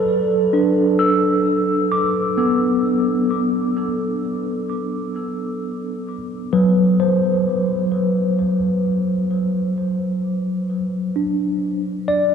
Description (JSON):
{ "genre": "ambient", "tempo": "65 BPM", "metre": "3/4", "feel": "straight", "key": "C lydian", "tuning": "A4 = 439 Hz", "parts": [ { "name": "tine electric piano", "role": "solo", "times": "0.0-12.3 s", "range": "F#3 to E6", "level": "-17 LUFS", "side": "equal", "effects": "medium stereo tremolo, ping-pong delay" } ], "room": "wet huge ambient reverb, RT60 8.1 s", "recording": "dreamy mix soaked in reverb", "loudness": "-17 LUFS", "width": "side -7 dB against mid", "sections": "0.0-8.4 A section; 8.4-12.3 B section", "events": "none", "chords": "0.0 C6; 8.4 D7", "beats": "| 0.08 1.00 1.93 | 2.85 3.77 4.70 | 5.62 6.54 7.47 | 8.39 9.31 10.24 | 11.16 12.08" }